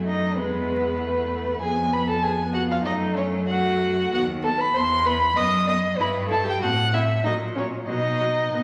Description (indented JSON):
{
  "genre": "quick classical-period movement for string quartet",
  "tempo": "96 BPM",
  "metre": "2/4",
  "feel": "rubato",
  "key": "unclear",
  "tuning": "A4 = 440 Hz",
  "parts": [
    { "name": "warm viola", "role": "accompaniment", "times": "0.0-8.6 s", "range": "F#3 to E4", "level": "-33 LUFS", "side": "equal", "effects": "none" },
    { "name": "clear cello", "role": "bass", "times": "0.0-8.6 s", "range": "D#2 to B2", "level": "-29 LUFS", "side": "equal", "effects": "none" },
    { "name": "rich violin", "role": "melody", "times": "0.1-8.6 s", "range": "B4 to D#6", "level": "-26 LUFS", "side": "equal", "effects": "none" },
    { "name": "warm violin", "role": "second line", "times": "0.1-8.6 s", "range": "B3 to D#5", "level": "-30 LUFS", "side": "equal", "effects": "none" }
  ],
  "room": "wet recital hall reverb, RT60 1.7 s",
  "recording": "vinyl crackle",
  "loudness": "-23 LUFS",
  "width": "mono",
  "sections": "0.0-8.6 A section",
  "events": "none",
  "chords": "0.4 E; 1.6 Fdim; 2.9 F#m; 4.1 B/D#; 4.8 E5; 5.4 B/F#; 6.0 Em/G; 6.6 F#dim/A; 7.2 F#/A#; 7.9 B"
}